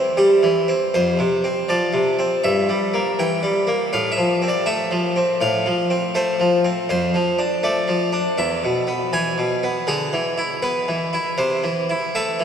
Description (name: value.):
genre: classical, baroque-style suite movement for harpsichord.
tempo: 80 BPM.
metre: 4/4.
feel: rubato.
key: unclear.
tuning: A4 = 442 Hz.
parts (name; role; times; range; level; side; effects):
harpsichord; solo; 0.0-12.4 s; E2 to G#5; -18 LUFS; equal; none.
room: wet huge ambient reverb, RT60 8.3 s.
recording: in a vast, echoing space.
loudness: -18 LUFS.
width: side -8 dB against mid.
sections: 0.0-12.4 A section.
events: none.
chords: 0.0 C; 0.9 F5; 2.4 Edim/G; 3.9 F/A; 6.9 Dm/F; 8.4 E; 9.9 E7/D; 11.4 Am/C.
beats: 0.18 | 0.95 1.69 2.44 3.19 | 3.92 4.66 5.41 6.15 | 6.89 7.64 8.39 9.14 | 9.89 10.64 11.39 12.15.